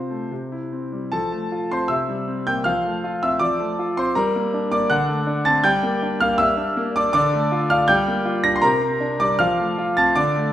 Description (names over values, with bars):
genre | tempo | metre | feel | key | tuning
classical-period piano sonatina | 80 BPM | 2/4 | rubato | F major | A4 = 440 Hz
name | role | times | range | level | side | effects
clear grand piano | solo | 0.0-10.5 s | C3 to Bb6 | -18 LUFS | equal | none
room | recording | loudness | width
moderate scoring stage reverb, RT60 1.7 s | recorded in a church or concert hall | -18 LUFS | side -12 dB against mid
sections
0.0-1.1 A section; 1.1-10.5 B section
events
none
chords
0.3 C; 1.1 F; 1.9 C7; 2.7 F; 4.2 Gm; 4.9 D7; 5.6 Gm; 7.1 Dm; 7.9 Gm7; 8.6 Csus2; 9.4 F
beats
0.31 | 1.13 1.90 | 2.66 3.42 | 4.17 4.91 | 5.64 6.38 | 7.13 7.88 | 8.62 9.38 | 10.15